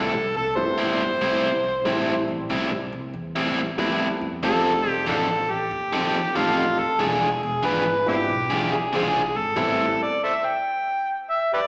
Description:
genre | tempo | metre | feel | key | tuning
electric blues shuffle | 93 BPM | 4/4 | swing 66% on 8ths | A minor | A4 = 441 Hz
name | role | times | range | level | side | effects
overdriven harmonica | melody | 0.0-11.7 s | C4 to G5 | -25 LUFS | equal | slapback echo
biting overdriven guitar | riff | 0.0-9.8 s | A2 to A4 | -28 LUFS | equal | slapback echo
upright bass | bass | 0.0-9.9 s | E1 to F2 | -37 LUFS | equal | none
clear upright piano | accompaniment | 0.6-9.9 s | F3 to G4 | -31 LUFS | equal | slapback echo
room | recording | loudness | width
light reverb, small room ambience | live gig heard through the venue's PA, recital hall reverb, small speaker sound | -23 LUFS | mono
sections
0.0-11.7 A section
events
none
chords
0.0 Am7; 4.4 F7; 7.0 E7b9; 9.6 Am7

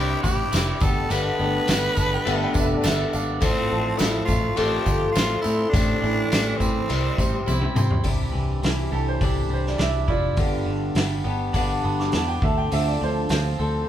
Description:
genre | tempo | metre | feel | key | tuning
folk rock and heartland rock | 104 BPM | 4/4 | straight | C major | A4 = 440 Hz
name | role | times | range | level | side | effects
raspy tenor saxophone | melody | 0.0-7.7 s | C4 to B4 | -27 LUFS | equal | none
picked old ladder-braced acoustic guitar | accompaniment | 0.0-13.9 s | G2 to A4 | -27 LUFS | left 3 dB | none
tonewheel organ | sustained chords | 0.0-8.0 s | G3 to A4 | -36 LUFS | right 1 dB | none
twangy electric guitar | riff | 0.0-13.9 s | G2 to A4 | -30 LUFS | right 3 dB | none
fingered electric bass | bass | 0.0-13.9 s | F1 to C3 | -26 LUFS | equal | none
vintage drum kit | drums | 0.2-13.4 s | crash cymbal, hi-hat, kick drum, snare drum, toms | -25 LUFS | equal | none
tambourine | percussion | 0.2-7.9 s | none | -36 LUFS | right 2 dB | none
bright upright piano | second line | 2.0-3.4, 8.9-13.9 s | F4 to D6 | -29 LUFS | right 5 dB | none
room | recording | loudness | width
moderate large studio reverb, RT60 1.4 s | band playing live in one room | -20 LUFS | side -11 dB against mid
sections
0.0-8.1 A section; 8.1-13.9 B section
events
drum fill 7.5-8.1; upright piano solo 8.1-13.9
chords
0.0 Cadd9; 0.8 Gadd9; 3.4 F/A; 5.7 Am7; 8.1 Cadd9; 10.4 G; 12.4 Dm7

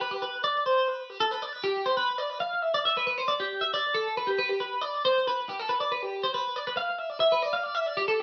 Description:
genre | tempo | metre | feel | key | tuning
rock | 137 BPM | 5/4 | straight | unclear | A4 = 439 Hz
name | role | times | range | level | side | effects
twelve-string electric guitar | solo | 0.0-8.2 s | G4 to F5 | -28 LUFS | equal | lush chorus, slapback echo
room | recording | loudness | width
moderate studio reverb, RT60 0.5 s | rough home demo mix | -28 LUFS | mono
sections
0.0-7.5 A section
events
none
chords
none

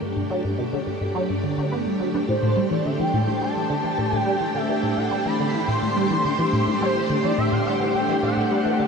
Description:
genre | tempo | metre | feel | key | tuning
ambient, sequencer-driven space music | 106 BPM | 4/4 | straight | unclear | A4 = 440 Hz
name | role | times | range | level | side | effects
string machine, full ensemble | sustained chords | 0.0-8.9 s | A3 to B5 | -25 LUFS | equal | ensemble chorus
resonant blip pluck | riff | 0.0-8.9 s | G2 to D4 | -24 LUFS | equal | phaser, ensemble chorus, cassette tape, ping-pong delay
bubbling stepped-filter texture | texture | 0.0-8.9 s | G4 | -33 LUFS | right 2 dB | chorus, built-in reverb
expressive portamento lead | melody | 2.3-8.9 s | C5 to C6 | -25 LUFS | right 1 dB | ensemble chorus, ping-pong delay
room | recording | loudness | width
wet shimmer reverb, RT60 9.1 s | dark, warm production | -20 LUFS | side -5 dB against mid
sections
0.0-8.9 A section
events
fade-in on string machine 0.0-8.9; fade-in on synth texture 0.0-8.9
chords
0.0 Gadd9; 2.3 Am7

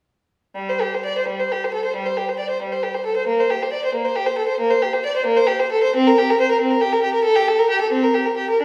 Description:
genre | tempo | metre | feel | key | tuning
classical, baroque-style suite movement for unaccompanied violin | 90 BPM (dotted quarters) | 12/8 | rubato | G minor | A4 = 437 Hz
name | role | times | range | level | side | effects
rich violin | solo | 0.6-8.6 s | G3 to D5 | -20 LUFS | equal | none
room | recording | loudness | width
wet recital hall reverb, RT60 1.5 s | heard from further back in the room | -20 LUFS | mono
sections
0.6-8.6 A section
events
none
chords
none

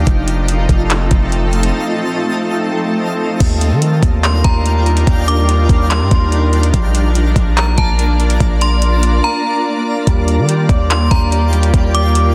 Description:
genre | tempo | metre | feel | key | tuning
hip hop, atmospheric cloud-rap | 144 BPM | 4/4 | half-time | Eb lydian | A4 = 439 Hz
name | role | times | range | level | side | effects
shimmering ambient pad | sustained chords | 0.0-12.3 s | Eb3 to D5 | -21 LUFS | equal | chorus, built-in reverb, sidechain pumping
long sustained 808-style bass | bass | 0.0-12.3 s | F1 to Eb3 | -16 LUFS | equal | none
twinkling granular texture | texture | 0.0-12.3 s | D4 to A6 | -28 LUFS | equal | built-in reverb
smooth R&B drum kit | drums | 0.1-12.2 s | crash cymbal, handclaps, hi-hat, kick drum | -18 LUFS | equal | none
metallic FM bell | melody | 4.2-12.3 s | A5 to D6 | -23 LUFS | equal | chorus, tape echo
Celtic harp | arpeggios | 10.1-12.3 s | G3 to D5 | -26 LUFS | equal | tape echo
room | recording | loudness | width
light reverb, digital ambience | dense, heavily limited modern master | -14 LUFS | mono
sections
0.0-3.4 A section; 3.4-12.3 B section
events
drums muted 9.2-10.1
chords
0.1 F7; 3.4 Ebmaj9; 6.7 Bbmaj7; 10.1 Ebmaj9

